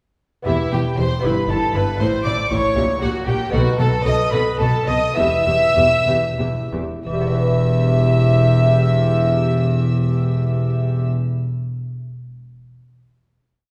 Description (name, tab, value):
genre	classical, baroque-style concerto movement with solo episodes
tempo	58-79 BPM (dotted quarters)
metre	6/8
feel	straight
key	E minor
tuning	A4 = 440 Hz
part	lute	accompaniment	0.4-11.4 s	E2 to B4	-31 LUFS	equal	none
part	rich chamber violin section	melody	0.5-11.1 s	E5 to E6	-30 LUFS	equal	none
part	warm violin	melody	0.5-11.1 s	E4 to E5	-26 LUFS	equal	none
part	rich chamber violin section	second line	0.5-11.1 s	E4 to E5	-26 LUFS	equal	none
part	dark chamber viola section	accompaniment	0.5-11.1 s	E4 to A4	-30 LUFS	equal	none
part	rich chamber double bass section	bass	0.5-11.1 s	E1 to B1	-23 LUFS	equal	none
part	warm chamber cello section	bass	0.5-11.1 s	E2 to B2	-26 LUFS	equal	none
room	wet recital hall reverb, RT60 1.6 s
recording	heard from further back in the room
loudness	-18 LUFS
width	mono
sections	0.5-7.1 ritornello; 7.1-11.2 final chord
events	slowing down 2.8-7.1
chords	0.5 Em; 1.2 Em/G; 2.0 A5; 2.8 A#dim7; 3.5 B7; 5.2 Em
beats	| 0.47 1.24 | 2.00 2.77 | 3.53 4.33 | 5.17 6.07 | 7.06 8.09 | 9.12 10.15